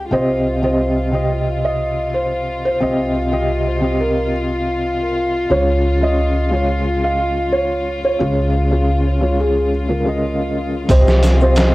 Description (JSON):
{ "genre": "trip hop", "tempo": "89 BPM", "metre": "4/4", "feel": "straight", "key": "C phrygian", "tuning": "A4 = 440 Hz", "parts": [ { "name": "felt-muted upright piano", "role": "accompaniment", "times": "0.0-11.7 s", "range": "C3 to Eb5", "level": "-20 LUFS", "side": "equal", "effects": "tremolo, cassette tape, tape echo" }, { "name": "dark chamber string section", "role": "sustained chords", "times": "0.0-11.7 s", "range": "F4 to G4", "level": "-24 LUFS", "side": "left 1 dB", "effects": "vintage 12-bit sampler grit, cassette tape" }, { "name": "upright bass", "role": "bass", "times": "0.0-11.7 s", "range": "C2 to Db2", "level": "-20 LUFS", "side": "equal", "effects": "none" }, { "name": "felt-muted upright piano", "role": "melody", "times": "0.1-11.7 s", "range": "Ab4 to F5", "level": "-20 LUFS", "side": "right 1 dB", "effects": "cassette tape, tape echo" }, { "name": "trip hop sampler-style drum kit", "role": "drums", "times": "10.9-11.7 s", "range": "hi-hat, kick drum, snare drum", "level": "-16 LUFS", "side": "equal", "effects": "overdrive, cassette tape" }, { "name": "egg shaker", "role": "percussion", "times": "10.9-11.7 s", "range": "none", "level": "-39 LUFS", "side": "left 2 dB", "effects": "none" } ], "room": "studio reverb", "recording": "home recording on cassette", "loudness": "-15 LUFS", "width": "side -19 dB against mid", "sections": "0.0-10.9 A section", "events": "none", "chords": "0.1 Cm; 5.5 Db; 10.9 Cm" }